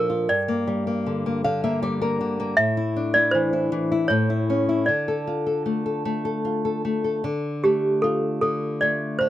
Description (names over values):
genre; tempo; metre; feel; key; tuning
children's music, lullaby; 77 BPM; 3/4; straight; D minor; A4 = 440 Hz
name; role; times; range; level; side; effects
toy piano; melody; 0.0-9.3 s; G4 to E5; -22 LUFS; right 1 dB; none
flamenco guitar; accompaniment; 0.0-9.3 s; G2 to F5; -23 LUFS; left 2 dB; none
room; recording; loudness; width
little or no reverb; close, detailed microphones; -21 LUFS; side -13 dB against mid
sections
0.0-7.2 A section; 7.2-9.3 B section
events
nylon-string guitar fill 1.1-2.6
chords
0.3 Gm; 2.6 Asus4; 4.1 A; 4.9 Dm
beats
| 0.30 1.06 1.82 | 2.58 3.34 4.11 | 4.88 5.66 6.45 | 7.25 8.03 8.81